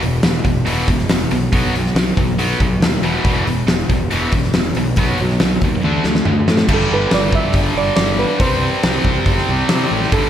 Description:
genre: classic rock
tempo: 140 BPM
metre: 4/4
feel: straight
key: unclear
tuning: A4 = 437 Hz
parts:
  - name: tight distorted guitar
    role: riff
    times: 0.0-10.3 s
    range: E2 to D4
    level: -18 LUFS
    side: equal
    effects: distortion
  - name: fuzz picked electric bass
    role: bass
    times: 0.0-10.3 s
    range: E1 to C3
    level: -21 LUFS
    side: equal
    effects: overdrive
  - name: big rock drum kit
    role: drums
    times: 0.0-10.2 s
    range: crash cymbal, hi-hat, kick drum, snare drum, toms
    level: -17 LUFS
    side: equal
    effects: none
  - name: steel pan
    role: melody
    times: 6.7-10.3 s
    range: A4 to E5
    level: -20 LUFS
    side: right 4 dB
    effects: none
room: moderate lush hall reverb, RT60 1.9 s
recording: big arena sound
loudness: -14 LUFS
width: side -10 dB against mid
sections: 0.0-6.7 A section; 6.7-10.3 B section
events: drum fill 5.8-6.7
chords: 0.0 E5; 1.5 B5; 3.0 E5; 5.0 B; 5.8 D5; 6.7 G5; 8.4 C5

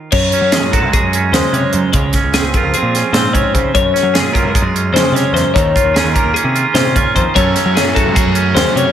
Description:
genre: math rock and midwest emo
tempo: 299 BPM (eighths)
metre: 9/8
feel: straight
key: unclear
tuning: A4 = 441 Hz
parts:
  - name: twangy electric guitar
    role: accompaniment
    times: 0.0-8.9 s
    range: Gb2 to A4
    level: -16 LUFS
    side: right 5 dB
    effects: spring reverb
  - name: twelve-string electric guitar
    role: arpeggios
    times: 0.1-8.9 s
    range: Ab4 to Db5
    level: -17 LUFS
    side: left 6 dB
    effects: spring reverb, slapback echo
  - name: growling picked electric bass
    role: bass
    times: 0.1-8.8 s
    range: C2 to Gb3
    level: -19 LUFS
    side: equal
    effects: overdrive
  - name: crisp fusion drum kit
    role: drums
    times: 0.1-8.9 s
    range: crash cymbal, hi-hat, kick drum, snare drum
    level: -16 LUFS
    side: right 1 dB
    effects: none
  - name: overdriven electric guitar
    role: riff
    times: 7.4-8.9 s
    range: Gb2 to Db4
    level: -20 LUFS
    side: right 1 dB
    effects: slapback echo
room: moderate lush hall reverb, RT60 1.9 s, studio reverb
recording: big arena sound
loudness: -11 LUFS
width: side -10 dB against mid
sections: 0.1-8.9 A section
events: none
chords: 0.1 Gbmadd9; 1.9 Dbmaj7; 3.7 Gbmaj9; 5.5 Ebsus2; 7.3 Gbmadd9

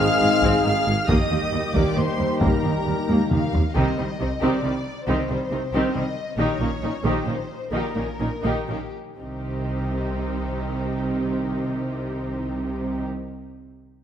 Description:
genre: cinematic, epic orchestral film score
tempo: 116-138 BPM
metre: 3/4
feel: straight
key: C minor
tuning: A4 = 440 Hz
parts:
  - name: warm symphonic violin section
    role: melody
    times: 0.0-13.0 s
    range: G4 to F6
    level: -32 LUFS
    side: left 4 dB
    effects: none
  - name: rich symphonic violin section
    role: second line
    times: 0.0-13.0 s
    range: G3 to F5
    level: -31 LUFS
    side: left 2 dB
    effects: none
  - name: warm symphonic viola section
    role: accompaniment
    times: 0.0-13.0 s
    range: Eb3 to Ab4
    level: -29 LUFS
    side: right 1 dB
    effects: none
  - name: bright trombone section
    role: sustained chords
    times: 0.0-3.5 s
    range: Eb3 to Ab3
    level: -28 LUFS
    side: right 1 dB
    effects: none
  - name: dark French horn section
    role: sustained chords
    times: 0.0-3.5 s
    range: Bb3 to Eb4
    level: -28 LUFS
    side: left 7 dB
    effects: none
  - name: mellow trumpet section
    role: stabs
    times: 0.0-3.5 s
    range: Bb4 to F5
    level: -27 LUFS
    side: equal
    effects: none
  - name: mellow tuba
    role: bass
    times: 0.0-3.6 s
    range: Ab1 to Eb2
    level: -27 LUFS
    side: right 2 dB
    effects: none
  - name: rich symphonic double bass section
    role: bass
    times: 0.0-13.1 s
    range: Ab1 to Eb2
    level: -30 LUFS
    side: right 2 dB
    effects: none
  - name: warm studio cello section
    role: bass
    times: 0.0-13.1 s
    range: Eb2 to C3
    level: -29 LUFS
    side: right 2 dB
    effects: none
  - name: taiko ensemble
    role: drums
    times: 0.4-3.7 s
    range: none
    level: -24 LUFS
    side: equal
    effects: none
room: moderate scoring stage reverb, RT60 1.7 s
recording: none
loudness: -21 LUFS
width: side -9 dB against mid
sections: 0.0-3.8 A section; 3.8-9.2 B section; 9.2-12.3 C section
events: drum fill 3.1-3.8; slowing down 5.7-9.2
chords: 0.0 Ab; 1.1 Eb; 3.8 Cm; 6.4 Eb7/Bb; 9.2 Cm

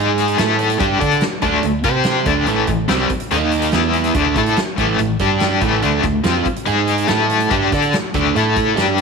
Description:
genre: classic rock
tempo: 143 BPM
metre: 4/4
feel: straight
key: unclear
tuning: A4 = 436 Hz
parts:
  - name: cranked stack guitar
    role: riff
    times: 0.0-9.0 s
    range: A2 to D5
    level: -18 LUFS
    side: left 12 dB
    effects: overdrive, tremolo
  - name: overdriven electric guitar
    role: riff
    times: 0.0-9.0 s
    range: A2 to D5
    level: -19 LUFS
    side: right 12 dB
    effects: harmonic tremolo
  - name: vintage muted fingered electric bass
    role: bass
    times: 0.0-9.0 s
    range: A1 to D3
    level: -24 LUFS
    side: equal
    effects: none
  - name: big rock drum kit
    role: drums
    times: 0.2-9.0 s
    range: hi-hat, kick drum, snare drum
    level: -23 LUFS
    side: equal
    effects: none
room: moderate plate reverb, RT60 1.3 s, studio reverb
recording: 1960s-style stereo with parts hard left and right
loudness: -14 LUFS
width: side -5 dB against mid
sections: 0.0-9.0 A section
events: none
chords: 0.4 A5; 0.8 D5; 1.9 C5; 2.3 D5; 2.5 A5; 3.3 D#5; 3.7 E5; 4.2 A5; 5.2 G5; 5.6 A5; 5.8 D5; 6.7 G#5; 7.1 A5; 7.5 D5; 8.4 A5

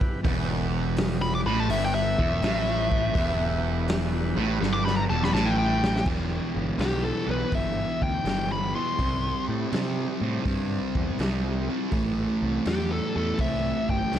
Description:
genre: blues rock power trio and southern rock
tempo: 82 BPM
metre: 4/4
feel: swing 68% on 8ths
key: E minor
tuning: A4 = 440 Hz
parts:
  - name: overdriven tonewheel organ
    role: sustained chords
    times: 0.0-6.0 s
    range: B3 to B4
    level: -38 LUFS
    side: right 4 dB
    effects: slow rotary speaker
  - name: raw garage drum kit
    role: drums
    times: 0.0-14.2 s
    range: crash cymbal, hi-hat, kick drum, snare drum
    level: -30 LUFS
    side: equal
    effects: none
  - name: fuzz guitar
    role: riff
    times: 0.2-14.2 s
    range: E2 to C4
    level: -28 LUFS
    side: right 1 dB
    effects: distortion
  - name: fuzz picked electric bass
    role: bass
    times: 0.2-14.2 s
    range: E1 to C3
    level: -29 LUFS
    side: equal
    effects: overdrive
  - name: bluesy overdriven lead guitar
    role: melody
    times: 1.2-14.2 s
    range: G4 to D6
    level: -29 LUFS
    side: left 2 dB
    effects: distortion
room: light reverb, small room ambience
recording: none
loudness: -23 LUFS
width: side -10 dB against mid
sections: 0.0-6.1 A section; 6.1-14.2 B section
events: lead electric guitar solo 0.0-6.1; drum fill 4.6-6.1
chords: 0.0 Em; 9.0 C5; 11.9 Am

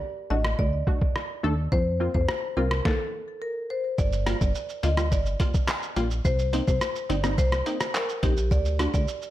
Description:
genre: dancehall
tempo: 106 BPM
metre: 4/4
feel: straight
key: G minor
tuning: A4 = 439 Hz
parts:
  - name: marimba with medium hard mallets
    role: melody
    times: 0.3-9.1 s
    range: G4 to Eb5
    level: -30 LUFS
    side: left 1 dB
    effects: tape echo
  - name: punchy chord stab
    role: accompaniment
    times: 0.3-8.9 s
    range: G3 to A4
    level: -30 LUFS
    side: equal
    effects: chorus
  - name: plucky analog bass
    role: bass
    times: 0.3-9.1 s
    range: G1 to F2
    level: -26 LUFS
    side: equal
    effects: none
  - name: lo-fi sampler-style drum kit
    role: drums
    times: 0.4-9.3 s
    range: handclaps, hi-hat, kick drum, rim click, shaker, snare drum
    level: -26 LUFS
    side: equal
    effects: overdrive
room: digital ambience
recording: none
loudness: -23 LUFS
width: side -14 dB against mid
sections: 0.0-4.0 A section; 4.0-9.3 B section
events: stop 2.9-4.0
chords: 0.0 D; 1.7 Fsus4; 4.0 Gm7; 6.2 Cm7; 8.5 D

